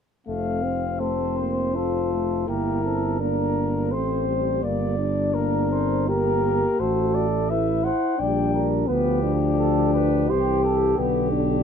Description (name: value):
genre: classical, brass quintet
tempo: 84 BPM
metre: 3/4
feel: uneven beats, rubato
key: F major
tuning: A4 = 440 Hz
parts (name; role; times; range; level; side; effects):
- mellow cornet; melody; 0.3-11.6 s; G4 to G5; -29 LUFS; left 9 dB; none
- dark trombone; accompaniment; 0.3-11.6 s; D3 to C4; -30 LUFS; right 4 dB; none
- mellow French horn; accompaniment; 0.3-11.6 s; A3 to G4; -25 LUFS; left 4 dB; none
- dark tuba; bass; 0.3-11.6 s; F1 to D2; -26 LUFS; right 4 dB; none
- mellow flugelhorn; second line; 1.0-11.6 s; G4 to D5; -29 LUFS; right 8 dB; none
room: light reverb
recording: dark, warm production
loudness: -20 LUFS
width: side -7 dB against mid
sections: 0.3-11.6 A section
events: none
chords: 0.3 F; 2.5 Edim/G; 3.9 Am7; 4.6 Gm; 6.8 F#dim/A; 8.2 Gm/Bb; 8.9 G5/D; 10.3 C; 11.0 G/B